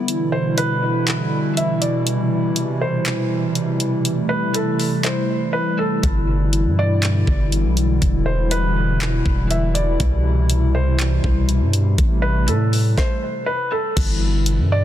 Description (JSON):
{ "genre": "hip hop, atmospheric cloud-rap", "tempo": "121 BPM", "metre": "4/4", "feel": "half-time", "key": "G major", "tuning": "A4 = 440 Hz", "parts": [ { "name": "hollow soft pad", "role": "sustained chords", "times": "0.0-14.8 s", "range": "B2 to E4", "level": "-21 LUFS", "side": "equal", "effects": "chorus, sidechain pumping" }, { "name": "smooth R&B drum kit", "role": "drums", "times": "0.1-14.6 s", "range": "crash cymbal, handclaps, hi-hat, kick drum, snare drum", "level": "-22 LUFS", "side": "equal", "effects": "none" }, { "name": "felt-muted upright piano", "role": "melody", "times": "0.3-14.8 s", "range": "A4 to E5", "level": "-25 LUFS", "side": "equal", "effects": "low-pass filter, tape echo" }, { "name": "long sustained 808-style bass", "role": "bass", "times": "6.0-14.8 s", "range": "E1 to A2", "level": "-18 LUFS", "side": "equal", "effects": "none" } ], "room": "digital ambience", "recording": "dense, heavily limited modern master", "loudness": "-17 LUFS", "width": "side -12 dB against mid", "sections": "0.0-14.0 A section", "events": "break 0.0-6.0; drums muted 5.5-6.0; stop 13.0-14.0", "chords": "0.1 Em7; 2.1 Cmaj7; 4.0 Am7; 6.0 G6; 8.0 Em7; 10.0 Cmaj7; 12.0 Am7; 14.0 G6", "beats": "| 0.08 0.58 1.07 1.57 | 2.07 2.56 3.06 3.55 | 4.05 4.55 5.04 5.54 | 6.03 6.53 7.03 7.52 | 8.02 8.51 9.01 9.51 | 10.00 10.50 10.99 11.49 | 11.98 12.48 12.98 13.47 | 13.97 14.46" }